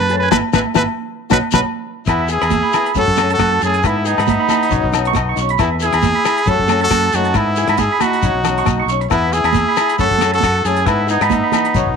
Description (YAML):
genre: highlife guitar band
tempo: 136 BPM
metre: 4/4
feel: swing 55% on 16ths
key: E major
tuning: A4 = 440 Hz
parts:
  - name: brilliant trumpet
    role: melody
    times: 0.0-12.0 s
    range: D#4 to B4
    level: -18 LUFS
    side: right 1 dB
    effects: none
  - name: twangy electric guitar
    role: arpeggios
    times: 0.0-11.9 s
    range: A4 to C#6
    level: -21 LUFS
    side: right 14 dB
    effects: wide subtle chorus, slapback echo
  - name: fingered electric bass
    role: bass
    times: 0.0-12.0 s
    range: G#1 to G#2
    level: -21 LUFS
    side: right 1 dB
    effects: none
  - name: nylon-string guitar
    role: accompaniment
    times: 0.1-12.0 s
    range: E3 to G#4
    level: -24 LUFS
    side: left 13 dB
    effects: none
  - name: cloth-damped thuddy drum kit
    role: drums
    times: 0.1-12.0 s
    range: hi-hat, kick drum, rim click, snare drum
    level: -22 LUFS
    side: left 3 dB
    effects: none
  - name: congas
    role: percussion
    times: 0.1-11.8 s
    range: none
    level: -23 LUFS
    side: right 14 dB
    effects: none
  - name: agogo bells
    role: percussion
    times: 0.3-11.7 s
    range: none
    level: -23 LUFS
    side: left 14 dB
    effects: none
  - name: shekere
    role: percussion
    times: 0.3-11.9 s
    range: none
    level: -28 LUFS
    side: left 7 dB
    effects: none
  - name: melodica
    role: second line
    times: 2.1-12.0 s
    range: B3 to F#4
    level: -24 LUFS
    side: left 14 dB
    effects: none
room: small room ambience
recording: 1960s-style stereo with parts hard left and right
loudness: -13 LUFS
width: side -6 dB against mid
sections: 0.0-2.1 A section; 2.1-12.0 B section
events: band accent 0.3-2.1; drum fill 1.6-2.1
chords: 0.3 E/G#; 1.2 Badd9; 2.1 E; 3.0 F#madd9; 3.8 E/G#; 4.7 Badd9; 5.6 E; 6.5 F#madd9; 7.4 E/G#; 8.2 Badd9; 9.1 E; 10.0 F#madd9; 10.9 E/G#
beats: | 0.33 0.76 1.20 1.64 | 2.08 2.52 2.96 3.40 | 3.83 4.27 4.71 5.15 | 5.59 6.03 6.47 6.91 | 7.35 7.79 8.23 8.67 | 9.11 9.55 9.99 10.43 | 10.87 11.31 11.75